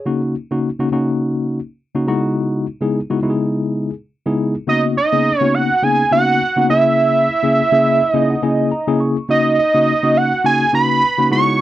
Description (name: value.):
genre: funk.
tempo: 104 BPM.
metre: 4/4.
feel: swing 56% on 16ths.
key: C# dorian.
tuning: A4 = 440 Hz.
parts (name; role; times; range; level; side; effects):
tine electric piano; accompaniment; 0.0-11.6 s; C#3 to C#6; -17 LUFS; left 2 dB; medium stereo tremolo.
fat analog lead; melody; 4.7-11.6 s; D#5 to C#6; -14 LUFS; right 3 dB; slapback echo.
room: light reverb.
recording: dry, close 1970s-style studio recording.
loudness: -14 LUFS.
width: side -14 dB against mid.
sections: 0.0-4.7 A section; 4.7-11.6 B section.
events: tine electric piano fill 7.6-9.3.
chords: 0.1 F#6/C#; 2.1 C#m11; 4.7 G#m11/C#; 6.7 C#m6; 9.3 C#13sus4.